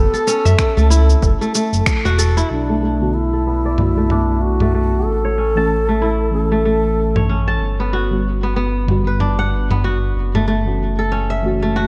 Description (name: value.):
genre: organic downtempo.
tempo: 94 BPM.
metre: 4/4.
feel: swing 58% on 16ths.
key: B minor.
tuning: A4 = 440 Hz.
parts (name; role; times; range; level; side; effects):
bright reedy bass bansuri; melody; 0.0-7.2 s; D4 to A4; -23 LUFS; equal; digital delay.
kora; arpeggios; 0.0-11.9 s; A3 to A5; -23 LUFS; equal; low-pass filter, digital delay.
smooth synth bass; bass; 0.0-11.9 s; E1 to F#2; -20 LUFS; equal; none.
dusty soul sampler-style drum kit; drums; 0.1-10.5 s; finger snaps, shaker, toms; -24 LUFS; equal; overdrive.
electronic kick drum; drums; 0.6-2.0 s; none; -20 LUFS; equal; none.
muted felt-like synth keys; accompaniment; 3.0-11.9 s; D3 to A4; -27 LUFS; equal; chorus, sidechain pumping, digital delay.
room: light reverb, digital ambience.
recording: dark, warm production.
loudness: -17 LUFS.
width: mono.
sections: 0.0-2.5 A section; 2.5-11.9 B section.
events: band accent 1.9-2.2; filter sweep on kora 2.5-11.9.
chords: 0.0 F#m7; 2.5 Bm7; 5.1 A; 7.6 Gmaj7; 10.2 F#m7.